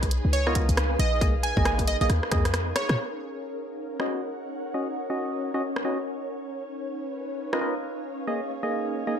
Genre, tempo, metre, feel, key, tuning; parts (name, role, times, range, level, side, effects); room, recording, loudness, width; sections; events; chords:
UK garage, two-step garage; 136 BPM; 4/4; swing 62% on 16ths; Eb minor; A4 = 438 Hz
soft string machine; sustained chords; 0.0-9.2 s; Db4 to Ab5; -38 LUFS; left 1 dB; ensemble chorus, sidechain pumping
short 808-style bass; bass; 0.0-3.0 s; Ab1 to Bb2; -25 LUFS; equal
electronic kick drum; drums; 0.0-2.4 s; -26 LUFS; equal; overdrive
house drum kit; drums; 0.0-7.6 s; hi-hat, rim click; -30 LUFS; equal; overdrive
ethereal airy pad; texture; 0.0-9.2 s; Eb4 to Gb5; -35 LUFS; equal; ensemble chorus, built-in reverb, sidechain pumping
plucky unison lead; melody; 0.3-3.0 s; Db5 to Ab5; -30 LUFS; right 2 dB; analog chorus, tape echo
percussive organ stab; stabs; 0.5-9.2 s; Bb3 to Eb5; -30 LUFS; equal; chorus, tape echo
light reverb, digital ambience; -25 LUFS; side -8 dB against mid
0.0-3.0 A section; 3.0-9.2 B section
drum fill 2.1-3.0; band accent 2.9; filter sweep on string machine 3.0-9.2
0.0 Db13; 1.2 Bb7sus4; 3.0 Ebm7; 6.3 Db13; 8.3 Bb7sus4